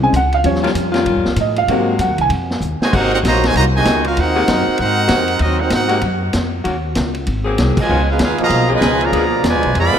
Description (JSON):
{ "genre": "jazz, big band swing", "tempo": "193 BPM", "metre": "4/4", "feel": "swing 62% on 8ths", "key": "unclear", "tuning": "A4 = 440 Hz", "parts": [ { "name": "warm baby grand piano", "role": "accompaniment", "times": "0.0-2.3 s", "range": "Db3 to Ab5", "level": "-17 LUFS", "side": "right 1 dB", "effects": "analog chorus" }, { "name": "clear saxophone section", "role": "sustained chords", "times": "0.0-10.0 s", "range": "C3 to Ab4", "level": "-22 LUFS", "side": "left 2 dB", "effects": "none" }, { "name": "upright bass", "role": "bass", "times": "0.0-10.0 s", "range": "Ab1 to A2", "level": "-19 LUFS", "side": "left 1 dB", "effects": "none" }, { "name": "vintage drum kit", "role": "drums", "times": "0.1-9.8 s", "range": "crash cymbal, hi-hat, kick drum, ride cymbal, snare drum", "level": "-22 LUFS", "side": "left 1 dB", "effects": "none" }, { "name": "clear trumpet section", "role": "melody", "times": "2.8-10.0 s", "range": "C4 to B5", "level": "-18 LUFS", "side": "right 1 dB", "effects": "analog delay" }, { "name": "warm trombone section", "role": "second line", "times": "2.8-10.0 s", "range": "Cb3 to Gb4", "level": "-20 LUFS", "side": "right 2 dB", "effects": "none" } ], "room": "moderate lush hall reverb, RT60 2.4 s", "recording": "dreamy mix soaked in reverb", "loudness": "-13 LUFS", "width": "side -8 dB against mid", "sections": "0.0-2.9 A section; 2.9-10.0 B section", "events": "grand piano solo 0.0-2.9; drum fill 2.6-2.9; band accent 7.7", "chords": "0.4 Eb9; 1.7 Ab9; 6.6 Ebm7; 7.3 Ab9; 7.9 Db9; 9.1 Ddim7" }